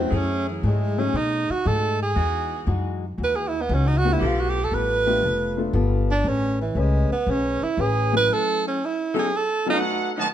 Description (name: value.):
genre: jazz, big band swing.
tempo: 118 BPM.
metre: 4/4.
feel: swing 69% on 8ths.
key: E major.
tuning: A4 = 435 Hz.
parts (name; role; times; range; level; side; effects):
warm tenor saxophone; melody; 0.0-9.8 s; E3 to B4; -23 LUFS; right 3 dB; plate reverb.
warm baby grand piano; accompaniment; 0.0-9.8 s; F#3 to A4; -28 LUFS; left 6 dB; none.
upright bass; bass; 0.0-8.3 s; F1 to B2; -24 LUFS; left 1 dB; none.
fingerpicked acoustic archtop guitar; accompaniment; 0.1-8.2 s; B2 to B4; -30 LUFS; left 5 dB; none.
clear saxophone section; sustained chords; 0.1-5.0, 9.1-10.3 s; D#3 to A4; -31 LUFS; left 1 dB; none.
clear trumpet section; melody; 9.7-10.3 s; D#4 to A5; -25 LUFS; right 2 dB; none.
warm trombone section; second line; 9.7-10.2 s; D#3 to F#4; -28 LUFS; right 2 dB; none.
room: moderate large studio reverb, RT60 0.9 s.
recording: dark, warm production.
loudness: -20 LUFS.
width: side -10 dB against mid.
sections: 0.0-10.3 A section.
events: tenor saxophone solo 0.0-10.3.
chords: 0.1 F#m9; 1.1 B6; 2.2 Emaj9; 4.2 G9; 6.2 Amaj9; 8.3 F#m9; 9.3 B7.